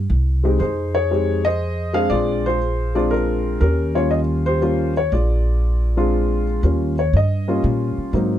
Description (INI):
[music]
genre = jazz piano trio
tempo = 119 BPM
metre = 3/4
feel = swing 68% on 8ths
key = unclear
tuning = A4 = 439 Hz
[part]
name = upright bass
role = bass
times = 0.0-8.4 s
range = Bb1 to Bb2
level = -20 LUFS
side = equal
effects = none
[part]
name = dark upright piano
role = melody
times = 0.4-8.4 s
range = Gb3 to F5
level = -20 LUFS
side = left 1 dB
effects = none
[sound]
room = little or no reverb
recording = close, detailed microphones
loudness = -17 LUFS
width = side -11 dB against mid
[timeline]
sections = 0.0-6.6 A section; 6.6-8.4 B section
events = upright piano solo 6.6-8.4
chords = 0.1 C5; 0.6 Fm7; 2.1 Bb7; 3.6 Eb7; 5.1 Bb7; 6.6 Eb7